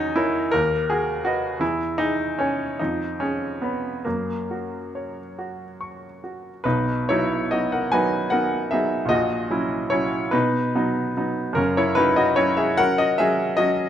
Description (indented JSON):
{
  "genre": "classical, romantic character piece for solo piano",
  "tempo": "45-56 BPM (dotted quarters)",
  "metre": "6/8",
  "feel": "rubato",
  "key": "B major",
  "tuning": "A4 = 440 Hz",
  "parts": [
    { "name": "clear baby grand piano", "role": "solo", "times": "0.0-13.9 s", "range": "F#1 to C#6", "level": "-20 LUFS", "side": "equal", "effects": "none" }
  ],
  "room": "moderate recital hall reverb, RT60 1.4 s",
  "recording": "close, detailed microphones",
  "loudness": "-20 LUFS",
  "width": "side -10 dB against mid",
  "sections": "0.0-6.6 A section; 6.6-13.9 B section",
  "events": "none",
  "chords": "0.0 F#7/E; 0.5 B/D#; 1.6 C#m/E; 2.8 C#7/E#; 4.0 F#; 6.6 B; 9.1 F#7/A#; 10.3 B; 11.6 F#"
}